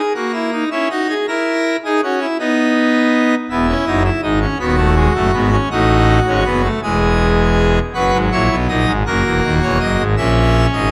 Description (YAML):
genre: classical, baroque-style 4-part fugue for pipe organ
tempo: 54 BPM (dotted quarters)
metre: 6/8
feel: straight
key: unclear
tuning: A4 = 440 Hz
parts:
  - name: pipe organ, full organ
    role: solo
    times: 0.0-10.9 s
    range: D#1 to E5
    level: -16 LUFS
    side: equal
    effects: none
room: moderate concert hall reverb, RT60 2.4 s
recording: none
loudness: -16 LUFS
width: mono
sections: 0.0-10.9 A section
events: none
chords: 0.2 F#/A#; 1.3 F#7/E; 2.4 B; 3.5 E; 4.6 B/D#; 5.7 B7/A; 6.8 E; 7.9 B/F#; 9.1 F#; 10.2 F#7/A# (rootless)